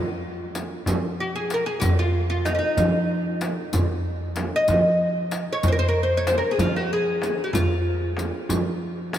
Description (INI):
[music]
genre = Persian modal ensemble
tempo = 63 BPM (dotted quarters)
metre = 6/8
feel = straight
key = F dastgah shur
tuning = A4 = 440 Hz
[part]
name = oud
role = melody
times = 0.0-8.8 s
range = Db4 to Eb5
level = -24 LUFS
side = equal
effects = none
[part]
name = upright bass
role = bass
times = 0.0-9.2 s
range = F2 to F3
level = -26 LUFS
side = equal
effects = none
[part]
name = frame drum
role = percussion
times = 0.6-9.2 s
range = none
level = -30 LUFS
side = right 2 dB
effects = none
[part]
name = riq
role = percussion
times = 0.6-9.2 s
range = none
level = -36 LUFS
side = left 5 dB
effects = none
[part]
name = tombak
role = percussion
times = 0.6-9.2 s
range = none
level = -31 LUFS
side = left 1 dB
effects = none
[sound]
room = wet cathedral reverb, RT60 6.3 s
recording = in a vast, echoing space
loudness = -21 LUFS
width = side -11 dB against mid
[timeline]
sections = 0.0-9.2 A section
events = none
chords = none